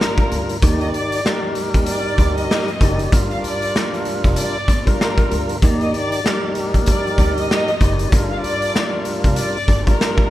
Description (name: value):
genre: hip hop, boom-bap hip-hop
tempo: 96 BPM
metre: 4/4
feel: swing 58% on 16ths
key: G minor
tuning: A4 = 438 Hz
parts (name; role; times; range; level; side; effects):
- warm symphonic violin section; melody; 0.0-10.3 s; Bb4 to F5; -24 LUFS; equal; high-pass filter, low-pass filter, tape echo
- tonewheel organ; accompaniment; 0.0-10.3 s; Eb3 to D5; -22 LUFS; equal; slow rotary speaker, cassette tape, high-pass filter, low-pass filter
- raw garage drum kit; drums; 0.0-10.3 s; hi-hat, kick drum, rim click, snare drum; -18 LUFS; equal; none
- upright bass; bass; 0.3-9.9 s; F1 to Eb2; -23 LUFS; equal; none
room: studio reverb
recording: rough home demo mix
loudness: -16 LUFS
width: side -14 dB against mid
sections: 0.0-10.3 A section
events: none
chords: 0.0 Gm7; 0.6 Ebmaj7; 3.1 Gm7; 5.6 Ebmaj7; 8.1 Gm7